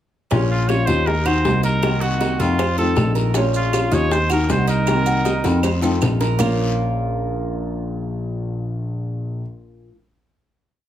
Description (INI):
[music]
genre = latin, Cuban son and guajira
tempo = 158 BPM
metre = 4/4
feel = straight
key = Bb harmonic minor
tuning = A4 = 440 Hz
[part]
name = flamenco guitar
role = accompaniment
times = 0.3-9.9 s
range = Bb2 to Gb4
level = -25 LUFS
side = left 2 dB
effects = none
[part]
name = Cuban tres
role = arpeggios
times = 0.3-9.4 s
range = Bb3 to C5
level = -26 LUFS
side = right 4 dB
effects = none
[part]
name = dark baby grand piano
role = bass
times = 0.3-9.4 s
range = Bb1 to F2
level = -21 LUFS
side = equal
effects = none
[part]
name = bongos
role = percussion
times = 0.3-6.5 s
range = none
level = -25 LUFS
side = left 2 dB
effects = none
[part]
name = guiro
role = percussion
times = 0.3-6.5 s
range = none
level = -36 LUFS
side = left 4 dB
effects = none
[part]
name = clear trumpet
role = melody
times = 0.5-5.6 s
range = F4 to Db5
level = -23 LUFS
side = right 1 dB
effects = plate reverb
[part]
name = claves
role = percussion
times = 0.7-6.5 s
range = none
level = -32 LUFS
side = right 3 dB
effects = none
[part]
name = maracas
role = percussion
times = 3.3-6.5 s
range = none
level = -36 LUFS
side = right 10 dB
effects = none
[sound]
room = moderate studio reverb, RT60 0.5 s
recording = none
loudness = -17 LUFS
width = side -11 dB against mid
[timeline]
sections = 0.3-6.4 montuno (vamp); 6.4-9.4 final chord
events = drum fill 5.4-6.4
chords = 0.3 Bbm; 1.1 Ebm; 1.8 Cm7b5; 2.6 F7; 3.4 Bbm; 4.1 Ebm; 4.9 Cm7b5; 5.6 F7; 6.4 Bbm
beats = | 0.32 0.70 1.07 1.45 | 1.83 2.21 2.59 2.97 | 3.35 3.73 4.11 4.49 | 4.87 5.25 5.63 6.01 | 6.39 6.78 7.16 7.54 | 7.92 8.30 8.69 9.07